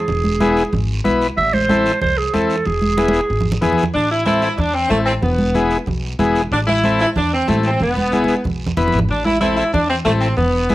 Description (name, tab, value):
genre	latin, cumbia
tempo	187 BPM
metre	4/4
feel	straight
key	A harmonic minor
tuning	A4 = 442 Hz
part	growling clarinet	second line	0.0-3.6 s	G#4 to E5	-19 LUFS	right 3 dB	cassette tape
part	upright bass	bass	0.1-10.7 s	E1 to E2	-22 LUFS	equal	none
part	congas	percussion	0.1-10.7 s	none	-22 LUFS	right 2 dB	none
part	guiro	percussion	0.1-10.7 s	none	-33 LUFS	right 4 dB	none
part	combo organ	accompaniment	0.4-10.7 s	B3 to B4	-19 LUFS	left 3 dB	cassette tape
part	clear saxophone section	melody	3.9-10.7 s	A3 to E4	-18 LUFS	equal	cassette tape
room	moderate studio reverb, RT60 0.6 s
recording	home recording on cassette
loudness	-15 LUFS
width	side -16 dB against mid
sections	0.0-3.9 A section; 3.9-10.7 B section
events	clarinet solo 0.0-3.9; drum fill 3.0-3.9, 8.1-9.1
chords	0.1 E; 1.4 Am; 2.7 E; 3.9 Am; 5.2 E; 6.5 Am; 7.8 E; 9.1 Am